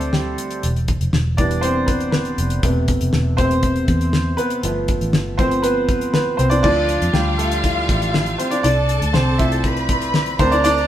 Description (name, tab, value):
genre	piano-driven pop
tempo	120 BPM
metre	4/4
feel	straight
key	unclear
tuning	A4 = 436 Hz
part	clear concert grand piano	accompaniment	0.0-10.9 s	C3 to E5	-19 LUFS	right 1 dB	none
part	vintage muted fingered electric bass	bass	0.0-10.9 s	E1 to F2	-21 LUFS	equal	none
part	damped 70s drum kit	drums	0.0-10.9 s	crash cymbal, hi-hat, kick drum, snare drum	-21 LUFS	left 1 dB	none
part	rich studio violin section	second line	6.6-10.9 s	F4 to B5	-24 LUFS	left 1 dB	none
room	moderate stone room reverb, RT60 1.1 s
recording	band playing live in one room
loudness	-16 LUFS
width	side -11 dB against mid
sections	0.0-6.6 A section; 6.6-10.9 B section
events	grand piano solo 0.0-6.6, 6.6-10.9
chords	0.0 Gsus4; 0.6 Em; 2.6 Amadd9/E; 4.6 G7; 6.6 Dmadd9; 8.6 F/C